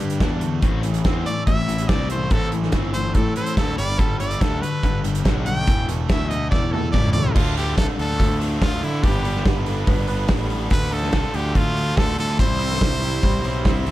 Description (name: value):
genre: indie rock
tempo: 143 BPM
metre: 4/4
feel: straight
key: A minor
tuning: A4 = 440 Hz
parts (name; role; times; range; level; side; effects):
- overdriven electric guitar; riff; 0.0-13.9 s; E2 to C5; -28 LUFS; left 6 dB; none
- overdriven electric guitar; riff; 0.0-13.9 s; G2 to A4; -31 LUFS; right 8 dB; wide subtle chorus
- fuzz picked electric bass; bass; 0.0-13.9 s; E1 to D3; -24 LUFS; equal; overdrive
- loose indie drum kit; drums; 0.1-13.9 s; crash cymbal, hi-hat, kick drum, snare drum, toms; -21 LUFS; equal; none
- brilliant trumpet; melody; 1.3-13.8 s; E4 to G5; -27 LUFS; equal; none
- tine electric piano; second line; 9.5-13.9 s; E4 to B4; -34 LUFS; right 7 dB; medium tremolo, digital delay
room: little or no reverb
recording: dark, warm production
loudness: -18 LUFS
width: side -15 dB against mid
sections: 0.0-7.4 A section; 7.4-13.9 B section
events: trumpet solo 0.0-7.4; drum fill 6.5-7.4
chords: 0.0 Gsus2; 0.6 Am; 3.8 Gadd9; 5.7 Esus4; 7.4 Dm; 9.0 Gadd9; 10.7 Dm; 12.4 C